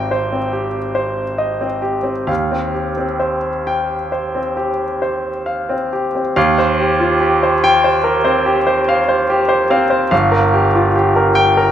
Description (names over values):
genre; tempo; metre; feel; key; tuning
classical, impressionist solo piano; 43-49 BPM (dotted quarters); 9/8; rubato; Eb major; A4 = 440 Hz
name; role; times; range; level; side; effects
bright concert grand piano; solo; 0.0-11.7 s; G1 to G5; -14 LUFS; equal; none
room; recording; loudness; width
moderate recital hall reverb, RT60 1.7 s; none; -14 LUFS; side -10 dB against mid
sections
0.0-6.4 A section; 6.4-11.7 B section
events
none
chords
0.0 Abmaj7; 2.3 Eb69; 10.1 Gm7